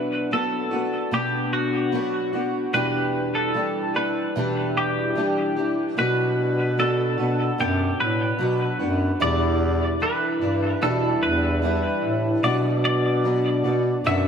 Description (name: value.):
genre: acoustic pop.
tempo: 74 BPM.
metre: 4/4.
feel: straight.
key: unclear.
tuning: A4 = 441 Hz.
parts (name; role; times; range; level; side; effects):
twelve-string electric guitar; melody; 0.0-14.3 s; F#4 to E5; -26 LUFS; equal; wide subtle chorus, diffuse ambient delay.
fingerpicked old ladder-braced acoustic guitar; accompaniment; 0.0-14.3 s; E2 to G4; -24 LUFS; equal; double-tracked left and right.
mellow bass clarinet; bass; 6.0-14.3 s; E2 to B2; -24 LUFS; equal; none.
room: wet plate reverb, RT60 3.6 s.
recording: dreamy mix soaked in reverb.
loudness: -20 LUFS.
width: side -7 dB against mid.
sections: 0.0-14.3 A section.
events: none.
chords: 0.0 Bm; 2.7 Em7; 6.0 Bm; 9.2 Em7; 12.4 Bm.